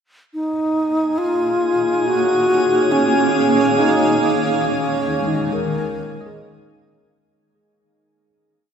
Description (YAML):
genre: ambient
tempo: 70 BPM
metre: 4/4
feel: straight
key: unclear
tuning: A4 = 441 Hz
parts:
  - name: mellow wooden-headed alto flute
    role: melody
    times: 0.3-6.8 s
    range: Db4 to Bb4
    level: -18 LUFS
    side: equal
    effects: shimmer reverb, diffuse ambient delay
  - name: granular cloud pad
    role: sustained chords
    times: 1.4-7.2 s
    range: Eb3 to F5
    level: -22 LUFS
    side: equal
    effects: built-in reverb, shimmer reverb
  - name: drifting glass-harmonics texture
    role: texture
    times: 1.2-7.2 s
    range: Ab4 to Ab5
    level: -23 LUFS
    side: right 2 dB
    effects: chorus, built-in reverb, shimmer reverb
  - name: tine electric piano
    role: arpeggios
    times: 3.6-8.7 s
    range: Ab3 to Eb5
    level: -27 LUFS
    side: equal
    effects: analog chorus, diffuse ambient delay
room: wet huge ambient reverb, RT60 7.5 s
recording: none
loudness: -16 LUFS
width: side -7 dB against mid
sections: 0.4-7.2 A section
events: fade-in on tine electric piano 0.4-7.2; fade-out 3.8-7.2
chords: 0.4 Ebm7; 3.8 Eb9sus4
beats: | 0.36 1.22 2.08 2.93 | 3.79 4.65 5.50 6.36